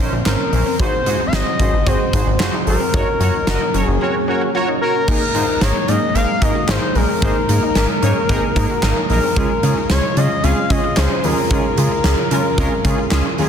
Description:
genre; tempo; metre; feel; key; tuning
synth-pop; 112 BPM; 4/4; straight; Ab mixolydian; A4 = 437 Hz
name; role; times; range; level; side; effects
analog synth brass; accompaniment; 0.0-13.5 s; Ab3 to Eb5; -22 LUFS; right 2 dB; chorus
string machine, full ensemble; sustained chords; 0.0-13.5 s; Db3 to Ab4; -25 LUFS; equal; ensemble chorus
wide unison pluck; arpeggios; 0.0-13.4 s; C4 to Gb4; -29 LUFS; left 4 dB; none
chorused synth bass; bass; 0.0-13.5 s; Gb1 to Db3; -18 LUFS; equal; none
expressive portamento lead; melody; 0.3-13.3 s; Bb4 to F5; -21 LUFS; left 3 dB; chorus, ping-pong delay
huge arena drum kit; drums; 0.3-13.5 s; crash cymbal, handclaps, hi-hat, kick drum, snare drum; -20 LUFS; equal; none
room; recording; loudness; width
moderate plate reverb, RT60 1.8 s, studio ambience; dense, heavily limited modern master; -14 LUFS; side -8 dB against mid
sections
0.0-5.1 A section; 5.1-13.5 B section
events
none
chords
0.0 Bbmadd9; 0.8 Ab7; 2.9 Gb; 5.1 Absus2; 9.4 Db

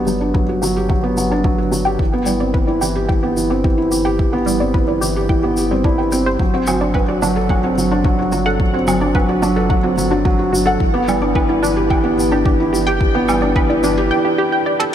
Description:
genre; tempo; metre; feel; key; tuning
piano and strings electronica; 109 BPM; 4/4; straight; unclear; A4 = 439 Hz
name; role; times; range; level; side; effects
analog pluck; arpeggios; 0.0-14.9 s; F#3 to G5; -22 LUFS; right 1 dB; chorus, phaser, sidechain pumping, tape echo
felt-muted upright piano; riff; 0.0-14.9 s; E3 to B4; -17 LUFS; right 1 dB; tape echo
warm sub bass; bass; 0.0-14.1 s; G1; -25 LUFS; equal; sidechain pumping
shaker, woodblock and toms; drums; 0.1-14.9 s; none; -26 LUFS; equal; high-pass filter on toms, high-pass filter on snare, high-pass filter on perc, high-pass filter on room
electronic kick drum; drums; 0.3-13.7 s; none; -18 LUFS; equal; none
room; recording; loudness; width
moderate huge ambient reverb, RT60 4.2 s; none; -14 LUFS; side -10 dB against mid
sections
0.0-14.9 A section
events
build-up 0.0-14.9; filter sweep on synth arpeggio sound 0.0-14.9; drum fill 14.8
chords
0.0 Gmaj7; 2.0 Cmaj7/G; 6.4 D7/G; 10.8 Em7/G

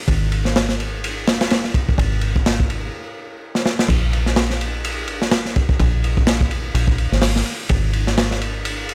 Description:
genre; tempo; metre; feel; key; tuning
breakbeat, breaks; 126 BPM; 4/4; swing 57% on 16ths; unclear; A4 = 437 Hz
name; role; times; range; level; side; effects
deep dub fingered electric bass; bass; 0.1-8.9 s; Gb1 to Bb1; -23 LUFS; equal; none
crunchy breakbeat drum kit; drums; 0.1-8.9 s; crash cymbal, hi-hat, kick drum, ride cymbal, snare drum; -21 LUFS; equal; none
room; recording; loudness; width
little or no reverb; none; -19 LUFS; mono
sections
0.0-3.9 A section; 3.9-8.9 B section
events
stop 2.9-3.9; drum fill 3.5-3.9; drop 3.9-8.9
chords
none

